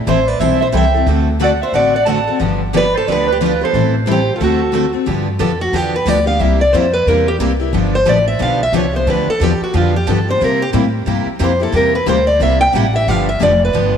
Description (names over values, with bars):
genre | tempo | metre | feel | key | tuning
acoustic string swing (jazz manouche) | 180 BPM | 4/4 | swing 60% on 8ths | G mixolydian | A4 = 440 Hz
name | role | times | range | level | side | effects
picked acoustic archtop guitar | melody | 0.1-14.0 s | F4 to G5 | -16 LUFS | equal | none
breathy soprano saxophone | second line | 0.1-4.9 s | A4 to A5 | -19 LUFS | right 8 dB | none
picked steel-string acoustic guitar | accompaniment | 0.1-13.9 s | C3 to A4 | -19 LUFS | left 9 dB | none
picked steel-string acoustic guitar | accompaniment | 0.1-13.9 s | C3 to A4 | -22 LUFS | right 10 dB | none
upright bass | bass | 0.1-14.0 s | F1 to C3 | -18 LUFS | equal | none
room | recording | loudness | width
moderate echo chamber reverb, RT60 2.1 s | 1960s-style stereo with parts hard left and right | -12 LUFS | side -8 dB against mid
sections
0.0-5.1 A section; 5.1-14.0 B section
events
steel-string acoustic guitar solo 5.1-14.0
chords
0.0 Am7; 1.1 D7; 2.4 G7; 3.7 Am7; 4.4 D7; 5.1 G7; 6.4 C7; 7.7 G7; 10.4 C7; 13.1 G7